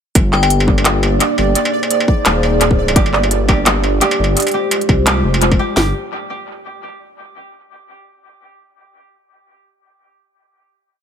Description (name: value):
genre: half-time drum and bass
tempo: 171 BPM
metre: 4/4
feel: swing 57% on 16ths, half-time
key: G phrygian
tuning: A4 = 440 Hz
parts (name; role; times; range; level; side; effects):
- dark analog pad; sustained chords; 0.5-5.9 s; Ab3 to D5; -20 LUFS; left 2 dB; chorus, sidechain pumping
- dark detuned saw bass; bass; 0.2-5.9 s; Eb1 to C2; -17 LUFS; equal; none
- industrial drum kit; drums; 0.2-5.6 s; handclaps, hi-hat, struck metal; -17 LUFS; equal; tape echo
- trap drum kit; drums; 0.2-5.9 s; hi-hat, kick drum, snare drum; -14 LUFS; equal; overdrive
- pulsing gated texture; texture; 0.6-5.8 s; D5; -22 LUFS; right 7 dB; chorus, built-in reverb
- glassy synth bell; melody; 0.3-0.5 s; G5; -23 LUFS; left 10 dB; chorus, phaser, dub echo
- koto; arpeggios; 3.0-5.9 s; G4; -24 LUFS; equal; dub echo
room: light reverb, digital ambience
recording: echo-heavy mix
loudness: -12 LUFS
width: side -8 dB against mid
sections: 0.2-5.8 drop; 5.8-7.2 final chord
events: drop 0.2-5.8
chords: 0.2 Gm; 1.6 Abadd9; 3.0 Gm; 4.4 Fmadd9; 5.8 Gm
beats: | 0.15 0.50 0.85 1.21 | 1.56 1.91 2.26 2.61 | 2.96 3.31 3.66 4.01 | 4.36 4.71 5.07 5.42 | 5.77